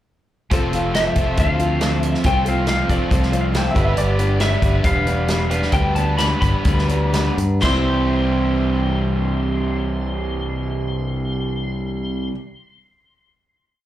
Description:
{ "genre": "folk rock and heartland rock", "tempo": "118-139 BPM", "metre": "4/4", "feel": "straight", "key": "C major", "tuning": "A4 = 438 Hz", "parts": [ { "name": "picked old ladder-braced acoustic guitar", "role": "accompaniment", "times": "0.5-12.4 s", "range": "G2 to B4", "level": "-26 LUFS", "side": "left 1 dB", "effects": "slapback echo" }, { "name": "raw garage guitar", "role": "riff", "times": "0.5-12.4 s", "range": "C3 to B4", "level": "-24 LUFS", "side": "right 1 dB", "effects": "overdrive" }, { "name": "fingered electric bass", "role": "bass", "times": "0.5-12.3 s", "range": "E1 to G2", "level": "-21 LUFS", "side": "equal", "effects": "none" }, { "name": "natural country drum kit", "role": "drums", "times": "0.5-7.7 s", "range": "hi-hat, kick drum, snare drum, splash cymbal", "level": "-22 LUFS", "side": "equal", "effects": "none" }, { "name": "electric slide guitar", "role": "melody", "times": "1.0-12.3 s", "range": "D5 to C6", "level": "-26 LUFS", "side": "left 2 dB", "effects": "slapback echo, analog delay" }, { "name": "bright upright piano", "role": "second line", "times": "3.4-4.3, 7.6-12.3 s", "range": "E4 to G5", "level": "-28 LUFS", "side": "right 1 dB", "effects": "slapback echo" } ], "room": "light reverb", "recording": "live gig heard through the venue's PA, club reverb", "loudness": "-17 LUFS", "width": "side -13 dB against mid", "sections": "0.5-7.6 pre-chorus; 7.6-11.7 final chord", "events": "slowing down 4.0-7.6", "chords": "0.5 F; 3.8 G; 7.6 C" }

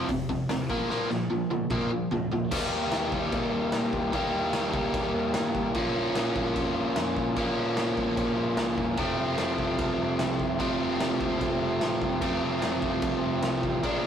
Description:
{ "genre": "punk rock", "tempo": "148 BPM", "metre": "4/4", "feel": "straight", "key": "unclear", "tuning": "A4 = 440 Hz", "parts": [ { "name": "biting overdriven guitar", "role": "riff", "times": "0.0-14.1 s", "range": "F2 to G4", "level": "-26 LUFS", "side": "equal", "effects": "none" }, { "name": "growling picked electric bass", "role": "bass", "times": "0.1-14.1 s", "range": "E1 to Bb2", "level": "-38 LUFS", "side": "equal", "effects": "overdrive" }, { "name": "raw garage drum kit", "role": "drums", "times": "0.1-13.9 s", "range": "crash cymbal, hi-hat, kick drum, snare drum, toms", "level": "-32 LUFS", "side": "equal", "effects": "none" } ], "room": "light reverb", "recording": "rough rehearsal-room recording, warm saturation", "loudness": "-25 LUFS", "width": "side -8 dB against mid", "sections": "0.0-2.5 A section; 2.5-14.1 B section", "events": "drum fill 0.9-2.5", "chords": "0.0 F5; 0.7 Bb5; 2.5 Eb; 5.8 Bbm; 9.0 F" }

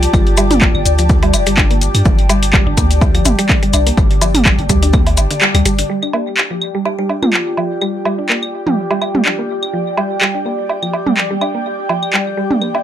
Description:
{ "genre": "minimal techno", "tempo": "125 BPM", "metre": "4/4", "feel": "swing 55% on 16ths", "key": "unclear", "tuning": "A4 = 440 Hz", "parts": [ { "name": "punchy sub bass", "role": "bass", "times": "0.0-5.8 s", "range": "F1 to G2", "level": "-15 LUFS", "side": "equal", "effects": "sidechain pumping" }, { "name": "punchy analog drum machine", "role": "drums", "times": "0.0-12.2 s", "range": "handclaps, hi-hat", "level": "-16 LUFS", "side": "equal", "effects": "none" }, { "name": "maracas", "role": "percussion", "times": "0.0-5.9 s", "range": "none", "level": "-23 LUFS", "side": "left 8 dB", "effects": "none" }, { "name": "airy breathy pad", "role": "texture", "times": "0.0-12.8 s", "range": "G4 to A5", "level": "-22 LUFS", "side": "left 2 dB", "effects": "chorus, phaser, sidechain pumping" }, { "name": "bubbling stepped-filter texture", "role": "texture", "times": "0.0-12.8 s", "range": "G4", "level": "-27 LUFS", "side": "equal", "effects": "chorus, built-in reverb, sidechain pumping" }, { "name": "mallet-like synth pluck", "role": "riff", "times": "0.1-12.6 s", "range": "D3 to D4", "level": "-21 LUFS", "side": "equal", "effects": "chorus, sidechain pumping, dub echo" }, { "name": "electronic kick drum", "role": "drums", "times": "0.1-5.0 s", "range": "none", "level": "-14 LUFS", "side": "equal", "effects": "overdrive" }, { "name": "electronic claves, woodblock and toms", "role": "percussion", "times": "0.1-12.8 s", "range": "none", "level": "-19 LUFS", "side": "right 2 dB", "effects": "dub echo" }, { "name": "kalimba", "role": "melody", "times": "6.9-7.9 s", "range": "F4 to G4", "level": "-25 LUFS", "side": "equal", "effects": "dub echo" } ], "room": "light reverb", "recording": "none", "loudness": "-12 LUFS", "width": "side -11 dB against mid", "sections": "0.0-5.9 A section; 5.9-12.8 B section", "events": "drop 0.0-5.9; kick drops out 5.4-5.9; band accent 5.4", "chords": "0.0 G5" }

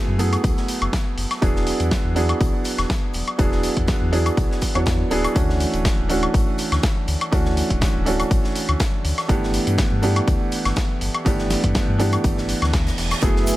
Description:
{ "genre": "deep house", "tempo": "122 BPM", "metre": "4/4", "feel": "swing 54% on 16ths", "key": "unclear", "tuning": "A4 = 441 Hz", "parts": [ { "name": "felt-muted upright piano", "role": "stabs", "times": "0.0-13.6 s", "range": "E3 to C#5", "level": "-23 LUFS", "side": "right 2 dB", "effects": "sidechain pumping, tape echo" }, { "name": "sub bass with octave", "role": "bass", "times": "0.1-13.5 s", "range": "D1 to G2", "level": "-23 LUFS", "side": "equal", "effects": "sidechain pumping" }, { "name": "dusty soul sampler-style drum kit", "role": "drums", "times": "0.2-13.6 s", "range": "hi-hat, snare drum, woodblock", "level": "-26 LUFS", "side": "left 1 dB", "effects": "none" }, { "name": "raw garage drum kit", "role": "drums", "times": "0.2-13.6 s", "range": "hi-hat, snare drum", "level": "-35 LUFS", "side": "left 2 dB", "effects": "sidechain pumping on hats, high-pass filter on hats, high-pass filter on snare, high-pass filter on room" }, { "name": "electronic kick drum", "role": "drums", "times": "0.4-13.3 s", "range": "none", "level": "-21 LUFS", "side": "equal", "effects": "overdrive" }, { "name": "reverse cymbal", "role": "sound effects", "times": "12.5-13.2 s", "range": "none", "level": "-32 LUFS", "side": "right 5 dB", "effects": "none" }, { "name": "hollow soft pad", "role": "sustained chords", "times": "13.2-13.6 s", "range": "A3 to G#5", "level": "-26 LUFS", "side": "right 2 dB", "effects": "chorus, sidechain pumping" }, { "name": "congas", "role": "percussion", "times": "13.2-13.3 s", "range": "none", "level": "barely audible", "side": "none", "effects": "none" }, { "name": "tube shaker", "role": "percussion", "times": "13.2-13.6 s", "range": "none", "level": "-30 LUFS", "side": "right 3 dB", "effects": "none" } ], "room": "small room ambience", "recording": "none", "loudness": "-18 LUFS", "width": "side -16 dB against mid", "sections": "0.0-13.6 A section", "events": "reverse cymbal 12.5-13.2", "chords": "0.0 F#m11; 1.4 E9; 5.4 Dmaj9; 9.3 G69" }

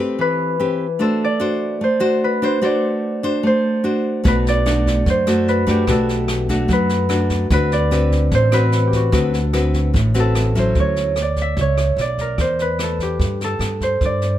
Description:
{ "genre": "bossa nova", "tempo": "148 BPM", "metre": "4/4", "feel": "straight", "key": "unclear", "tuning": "A4 = 440 Hz", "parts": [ { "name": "concert harp", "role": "melody", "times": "0.0-14.4 s", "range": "F#4 to E5", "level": "-21 LUFS", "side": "equal", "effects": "none" }, { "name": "nylon-string guitar", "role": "accompaniment", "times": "0.0-11.1 s", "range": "A2 to C5", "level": "-20 LUFS", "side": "left 1 dB", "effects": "none" }, { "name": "jazz brush drum kit", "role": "drums", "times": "4.2-14.3 s", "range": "kick drum, rim click, snare drum", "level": "-24 LUFS", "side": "equal", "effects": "none" }, { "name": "upright bass", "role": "bass", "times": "4.3-14.4 s", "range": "A1 to G2", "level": "-19 LUFS", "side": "equal", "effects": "none" } ], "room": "little or no reverb", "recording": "none", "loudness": "-16 LUFS", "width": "side -12 dB against mid", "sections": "0.0-10.8 A section; 10.8-14.4 B section", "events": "none", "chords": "0.0 Am9; 1.0 D7/A; 4.2 Bm7; 7.5 D13; 10.8 Dmaj9; 12.0 Bmmaj7; 12.4 Emadd11" }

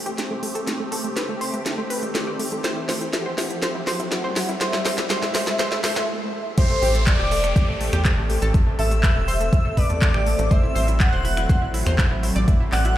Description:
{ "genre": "progressive house", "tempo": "122 BPM", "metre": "4/4", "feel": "straight", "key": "A dorian", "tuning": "A4 = 442 Hz", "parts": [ { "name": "filtered supersaw swell", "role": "sustained chords", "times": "0.0-13.0 s", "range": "F#3 to G4", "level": "-31 LUFS", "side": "right 1 dB", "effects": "phaser, sidechain pumping" }, { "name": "analog pluck", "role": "arpeggios", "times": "0.0-12.9 s", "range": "A3 to D5", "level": "-28 LUFS", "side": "equal", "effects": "chorus, sidechain pumping, ping-pong delay" }, { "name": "tight sequencer bass", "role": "bass", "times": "0.0-13.0 s", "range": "E1 to E2", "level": "-24 LUFS", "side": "equal", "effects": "sidechain pumping, high-pass filter" }, { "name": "riser and downlifter", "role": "sound effects", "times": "1.0-10.5 s", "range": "none", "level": "-32 LUFS", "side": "right 1 dB", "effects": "none" }, { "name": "house drum kit", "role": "drums", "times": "0.1-12.9 s", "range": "crash cymbal, finger snaps, handclaps, hi-hat, snare drum", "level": "-27 LUFS", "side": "equal", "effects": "sidechain pumping on hats, sidechain pumping on cymbals" }, { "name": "warm velvety synth lead", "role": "melody", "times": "0.9-13.0 s", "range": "C5 to F#5", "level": "-28 LUFS", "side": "left 1 dB", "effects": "chorus, dub echo" }, { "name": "airy dreamy lead", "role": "second line", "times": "6.6-13.0 s", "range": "C6 to F#6", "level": "-31 LUFS", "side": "equal", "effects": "chorus, sidechain pumping, ping-pong delay" }, { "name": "electronic kick drum", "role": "drums", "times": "6.6-12.6 s", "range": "none", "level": "-18 LUFS", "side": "equal", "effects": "overdrive" } ], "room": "light reverb, digital ambience", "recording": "played on a big sound system in a bare room, stone room reverb", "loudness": "-19 LUFS", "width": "side -13 dB against mid", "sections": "0.0-6.6 A section; 6.6-13.0 B section", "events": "build-up 0.0-6.6; drum fill 0.0-6.1; filter sweep on synth pluck 0.0-6.6; filter sweep on soft synth lead 0.0-6.6; riser 1.0-6.1; stop 6.1-6.6; drop 6.6-13.0", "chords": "0.0 Am7" }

